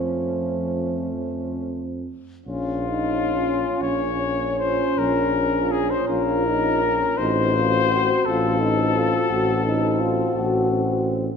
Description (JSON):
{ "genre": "classical, hymn-like piece for brass band", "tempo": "43-58 BPM (dotted quarters)", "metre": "12/8", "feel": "rubato", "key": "Bb minor", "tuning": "A4 = 440 Hz", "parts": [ { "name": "warm cornet", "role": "melody", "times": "0.0-11.1 s", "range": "Db4 to Db5", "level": "-24 LUFS", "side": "left 6 dB", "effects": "none" }, { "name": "mellow French horn section", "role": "second line", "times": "0.0-11.3 s", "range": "F4 to C5", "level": "-29 LUFS", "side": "right 6 dB", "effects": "none" }, { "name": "warm euphonium", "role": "accompaniment", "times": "0.0-11.2 s", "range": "A3 to F#4", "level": "-26 LUFS", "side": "left 3 dB", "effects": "none" }, { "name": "warm trombone", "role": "accompaniment", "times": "0.0-11.3 s", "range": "F3 to Db4", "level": "-28 LUFS", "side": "right 2 dB", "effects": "none" }, { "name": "mellow tuba", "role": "bass", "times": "0.0-11.3 s", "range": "A1 to F2", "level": "-26 LUFS", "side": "right 1 dB", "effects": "none" } ], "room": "moderate scoring stage reverb, RT60 1.9 s", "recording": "minimal, uncompressed stereo recording", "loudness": "-19 LUFS", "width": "side -6 dB against mid", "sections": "0.0-2.5 A section; 2.5-11.4 B section", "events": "none", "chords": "0.0 F; 2.5 Bbm; 7.2 Adim7", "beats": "1.14 | 2.46 3.81 4.98 6.09 | 7.19 8.26 9.30 10.36" }